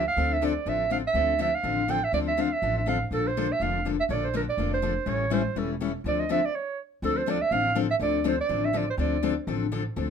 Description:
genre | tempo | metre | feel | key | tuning
acoustic string swing (jazz manouche) | 245 BPM | 4/4 | swing 55% on 8ths | D minor | A4 = 442 Hz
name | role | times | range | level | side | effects
clear clarinet | melody | 0.0-9.3 s | A4 to G5 | -26 LUFS | right 5 dB | none
picked steel-string acoustic guitar | accompaniment | 0.0-10.1 s | D3 to A4 | -28 LUFS | left 8 dB | none
upright bass | bass | 0.0-10.1 s | E1 to D2 | -32 LUFS | right 1 dB | none
room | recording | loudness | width
moderate club reverb, RT60 0.6 s | minimal, uncompressed stereo recording | -24 LUFS | side -7 dB against mid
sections
0.0-7.0 A section; 7.0-10.1 A section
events
stop 6.5-7.0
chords
0.2 Dm9; 3.1 Bbmaj7; 5.1 A7#9; 6.1 Dm7; 6.5 N.C.; 7.0 Dm7

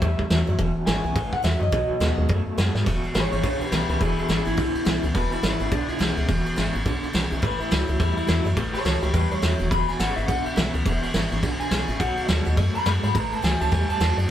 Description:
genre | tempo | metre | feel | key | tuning
rockabilly | 210 BPM | 4/4 | swing 60% on 8ths | E major | A4 = 439 Hz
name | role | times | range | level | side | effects
electric guitar through a small old amp | melody | 0.0-14.2 s | D4 to B5 | -28 LUFS | left 1 dB | none
picked steel-string acoustic guitar | accompaniment | 0.0-14.3 s | E2 to F#4 | -29 LUFS | left 1 dB | none
electric guitar through a small old amp | riff | 0.0-14.3 s | E2 to A3 | -31 LUFS | right 1 dB | tremolo
woody FM bass | bass | 0.0-14.3 s | D#1 to G#2 | -26 LUFS | equal | none
vintage brush drum kit | drums | 0.0-14.2 s | crash cymbal, hi-hat, kick drum, ride cymbal, snare drum | -26 LUFS | right 1 dB | none
room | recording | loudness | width
moderate stone room reverb, RT60 1.2 s | band playing live in one room, faint mains hum | -21 LUFS | side -11 dB against mid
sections
0.0-2.9 A section; 2.9-14.3 B section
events
drum fill 2.7; clean electric guitar solo 2.9-14.3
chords
0.0 A; 0.6 E; 1.2 A; 1.7 B; 2.9 E; 7.4 A; 9.7 E; 12.0 B; 13.2 A

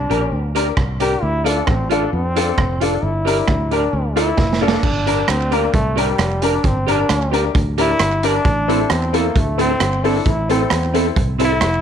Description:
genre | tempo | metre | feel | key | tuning
ska | 133 BPM | 4/4 | straight | unclear | A4 = 436 Hz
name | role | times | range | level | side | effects
bright trombone | melody | 0.0-11.8 s | G3 to G4 | -21 LUFS | equal | none
fingered electric bass | bass | 0.0-11.8 s | F1 to F2 | -21 LUFS | equal | none
clean electric guitar | accompaniment | 0.1-11.6 s | C4 to D5 | -24 LUFS | right 12 dB | analog chorus
clear upright piano | stabs | 0.1-11.5 s | C4 to Bb4 | -22 LUFS | left 11 dB | slapback echo
raw garage drum kit | drums | 0.1-11.7 s | crash cymbal, hi-hat, kick drum, rim click, snare drum | -21 LUFS | right 2 dB | none
group handclap | percussion | 5.3-11.7 s | none | -32 LUFS | right 8 dB | slapback echo
room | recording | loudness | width
light reverb, small room ambience | 1960s-style stereo with parts hard left and right | -15 LUFS | side -8 dB against mid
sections
0.0-4.8 A section; 4.8-11.8 B section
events
drum fill 4.4-4.8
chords
0.0 Gm; 1.2 Dm; 3.0 Gm; 3.9 Dm; 4.8 Gm; 8.5 Am

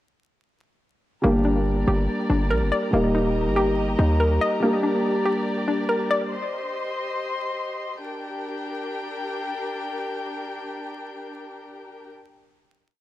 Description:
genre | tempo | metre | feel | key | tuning
hip hop, drill | 142 BPM | 4/4 | half-time | G minor | A4 = 440 Hz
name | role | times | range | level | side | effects
dark baby grand piano | accompaniment | 1.2-6.3 s | G3 to G4 | -24 LUFS | equal | none
muted chamber string section | sustained chords | 1.2-12.1 s | D4 to C6 | -30 LUFS | left 1 dB | none
hollow square pluck | arpeggios | 1.2-6.3 s | Bb3 to Eb5 | -25 LUFS | left 1 dB | chorus, analog delay
hard-hitting 808-style bass | bass | 1.2-4.4 s | Eb1 to Eb2 | -22 LUFS | equal | none
room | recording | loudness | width
light reverb, small room ambience | dry, gritty hardware recording, transformer saturation, vinyl crackle | -22 LUFS | side -14 dB against mid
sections
1.2-8.0 breakdown; 8.0-11.4 final chord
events
none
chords
1.2 Gm; 2.9 Eb; 4.6 Gm; 6.3 Cm; 8.0 Gm

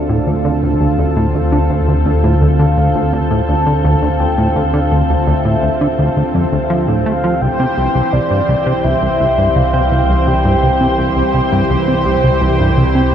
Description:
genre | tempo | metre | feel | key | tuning
ambient, sequencer-driven space music | 84 BPM | 4/4 | straight | D minor | A4 = 440 Hz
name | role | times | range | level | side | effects
mellow horn-like synth lead | melody | 0.0-11.7 s | D5 to A5 | -20 LUFS | left 1 dB | chorus, shimmer reverb, analog delay
lush unison pad | sustained chords | 0.0-13.1 s | D3 to C5 | -17 LUFS | right 1 dB | chorus, shimmer reverb
analog drone | bass | 0.0-13.1 s | C2 to D2 | -17 LUFS | equal | chorus, phaser
wind-like tuned noise texture | texture | 0.0-13.1 s | G4 to G5 | -28 LUFS | left 1 dB | built-in reverb, shimmer reverb
plucky analog bass | riff | 0.1-13.0 s | C2 to A3 | -16 LUFS | equal | analog delay
room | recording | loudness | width
wet huge ambient reverb, RT60 7.9 s | in a vast, echoing space, cassette tape | -12 LUFS | side -9 dB against mid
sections
0.0-13.1 A section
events
fade-in on synth texture 0.0-13.1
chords
0.0 Dm7; 7.4 C

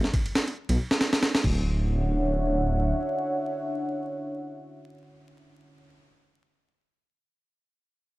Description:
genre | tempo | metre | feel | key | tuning
breakbeat, breaks | 138 BPM | 4/4 | swing 56% on 16ths | D major | A4 = 440 Hz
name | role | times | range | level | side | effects
breakbeat sampler-style drum kit | drums | 0.0-1.5 s | crash cymbal, kick drum, ride cymbal, snare drum | -24 LUFS | equal | studio reverb
dark detuned saw bass | bass | 0.7-2.9 s | D1 to B1 | -25 LUFS | equal | none
dark analog pad | sustained chords | 1.8-5.9 s | D4 to F#5 | -29 LUFS | equal | chorus, sidechain pumping
room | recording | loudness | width
little or no reverb | dry, gritty hardware recording, transformer saturation, vinyl crackle | -24 LUFS | side -19 dB against mid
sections
0.0-1.7 A section; 1.7-5.1 B section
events
drop 0.0-1.7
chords
0.0 N.C.; 1.4 Dmaj9

